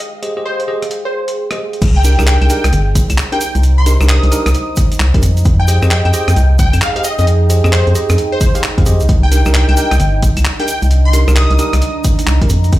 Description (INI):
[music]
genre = UK garage, two-step garage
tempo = 132 BPM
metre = 4/4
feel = swing 63% on 16ths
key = C minor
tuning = A4 = 442 Hz
[part]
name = breakbeat sampler-style drum kit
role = drums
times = 0.0-12.8 s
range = claves, crash cymbal, handclaps, hi-hat, rim click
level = -21 LUFS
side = equal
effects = none
[part]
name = deep dark ambient pad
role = texture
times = 0.0-12.8 s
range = D4 to Bb5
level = -23 LUFS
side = right 3 dB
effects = chorus, built-in reverb, sidechain pumping
[part]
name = bell-like tine electric piano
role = stabs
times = 0.2-12.5 s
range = D4 to F5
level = -21 LUFS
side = right 1 dB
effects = tape echo
[part]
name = plucky unison lead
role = melody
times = 0.5-12.0 s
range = C5 to Eb6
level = -20 LUFS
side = left 1 dB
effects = ensemble chorus, vintage 12-bit sampler grit, tape echo
[part]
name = organ-like FM bass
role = bass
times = 1.8-12.8 s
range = G1 to F2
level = -11 LUFS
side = equal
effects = none
[part]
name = electronic kick drum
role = drums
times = 1.8-12.8 s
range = none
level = -14 LUFS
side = equal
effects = none
[part]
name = egg shaker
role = percussion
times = 1.8-12.8 s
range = none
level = -28 LUFS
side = right 2 dB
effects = none
[sound]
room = light reverb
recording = played on a big sound system in a bare room, large studio reverb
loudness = -10 LUFS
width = side -16 dB against mid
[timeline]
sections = 0.0-1.8 A section; 1.8-12.8 B section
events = drop 1.8-12.8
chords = 0.0 Fm9; 1.8 Cm9; 5.2 Fm9; 9.1 Cm9